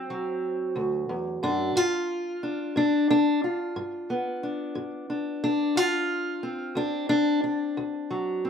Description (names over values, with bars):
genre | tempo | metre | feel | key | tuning
acoustic country blues, solo or duo | 60 BPM (dotted quarters) | 12/8 | straight | unclear | A4 = 441 Hz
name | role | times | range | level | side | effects
fingerpicked steel-string acoustic guitar | solo | 0.0-8.5 s | D2 to F4 | -24 LUFS | left 1 dB | slapback echo
room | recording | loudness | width
little or no reverb | recorded outdoors, with no room sound | -24 LUFS | side -7 dB against mid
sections
0.0-8.5 A section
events
steel-string acoustic guitar solo 0.0-8.5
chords
0.0 D7; 1.8 G7; 5.8 D7